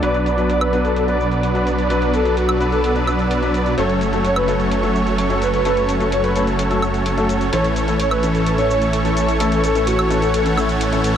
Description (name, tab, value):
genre	EDM, festival progressive house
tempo	128 BPM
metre	4/4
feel	straight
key	B minor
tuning	A4 = 440 Hz
part	breathy flute-like synth lead	melody	0.0-10.4 s	F#4 to D5	-23 LUFS	equal	lush chorus, digital delay
part	clear grand piano	accompaniment	0.0-11.2 s	E3 to B4	-24 LUFS	left 4 dB	none
part	lush unison pad	sustained chords	0.0-11.2 s	A4 to E6	-27 LUFS	equal	chorus
part	supersaw chords	riff	0.0-11.2 s	E3 to D5	-20 LUFS	right 1 dB	low-pass filter, digital delay
part	wide detuned saw bass	bass	0.0-11.2 s	F#1 to B1	-23 LUFS	equal	chorus
part	electronic hi-hat, shaker and woodblock	drums	0.0-11.1 s	none	-28 LUFS	right 2 dB	low-pass filter on snare, low-pass filter on hats, low-pass filter on perc, low-pass filter on cymbals, low-pass filter on room
room	moderate lush hall reverb, RT60 1.7 s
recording	none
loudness	-16 LUFS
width	side -9 dB against mid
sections	0.0-11.2 A section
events	filter sweep on supersaw synth 0.0-11.2; filter sweep on analog synth pad 0.0-11.2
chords	0.0 Bm; 3.8 F#m; 7.5 A